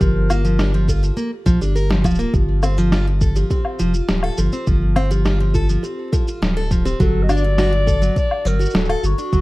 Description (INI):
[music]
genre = folktronica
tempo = 103 BPM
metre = 4/4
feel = straight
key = unclear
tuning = A4 = 439 Hz
[part]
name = dark clarinet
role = melody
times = 0.0-0.8, 7.0-9.4 s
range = F#4 to Eb5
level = -24 LUFS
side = left 2 dB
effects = vintage 12-bit sampler grit, ping-pong delay
[part]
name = music box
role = second line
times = 0.0-9.4 s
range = F4 to A4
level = -28 LUFS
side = right 1 dB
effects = tape echo
[part]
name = picked plugged-in steel-string acoustic guitar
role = arpeggios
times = 0.0-9.4 s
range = F3 to Bb4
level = -23 LUFS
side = right 1 dB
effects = none
[part]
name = warm sub bass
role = bass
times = 0.0-9.4 s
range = D1 to Bb1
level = -18 LUFS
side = equal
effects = none
[part]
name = electronic kick drum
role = drums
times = 0.0-9.4 s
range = none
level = -20 LUFS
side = equal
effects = none
[part]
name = electronic shaker, woodblock and snare drum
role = drums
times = 0.0-9.4 s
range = none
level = -24 LUFS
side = equal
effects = none
[sound]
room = little or no reverb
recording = dark, warm production, vinyl crackle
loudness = -16 LUFS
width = side -20 dB against mid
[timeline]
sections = 0.0-9.4 A section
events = none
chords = 0.0 Gm7; 2.3 F5; 7.0 D